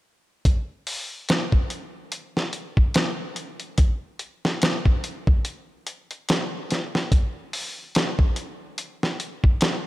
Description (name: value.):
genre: trip hop.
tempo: 72 BPM.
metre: 4/4.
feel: swing 57% on 16ths.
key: none.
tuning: none.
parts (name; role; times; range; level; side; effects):
dusty soul sampler-style drum kit; drums; 0.5-9.8 s; hi-hat, kick drum, snare drum; -21 LUFS; equal; studio reverb.
room: light reverb, digital ambience.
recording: none.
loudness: -22 LUFS.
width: side -17 dB against mid.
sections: 0.5-9.9 A section.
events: none.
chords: none.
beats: | 0.45 1.28 2.12 2.95 | 3.79 4.62 5.45 6.29 | 7.12 7.95 8.79 9.62.